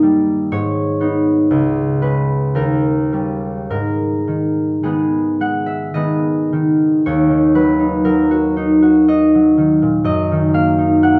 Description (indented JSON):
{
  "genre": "classical, solo harp piece",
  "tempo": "51-63 BPM",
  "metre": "3/4",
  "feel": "rubato",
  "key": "G# minor, Eb minor from 7.0 s",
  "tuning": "A4 = 437 Hz",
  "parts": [
    { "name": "concert harp", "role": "solo", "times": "0.0-11.2 s", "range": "C#2 to G5", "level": "-16 LUFS", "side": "equal", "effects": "none" }
  ],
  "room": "light reverb",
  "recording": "none",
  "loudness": "-16 LUFS",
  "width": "mono",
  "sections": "0.0-7.0 A section; 7.0-11.2 B section",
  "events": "none",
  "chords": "0.0 D#/G; 0.5 G#m; 1.5 C#5; 2.5 D#7; 3.7 G#m; 7.0 Ebm; 10.1 Ebm/Gb"
}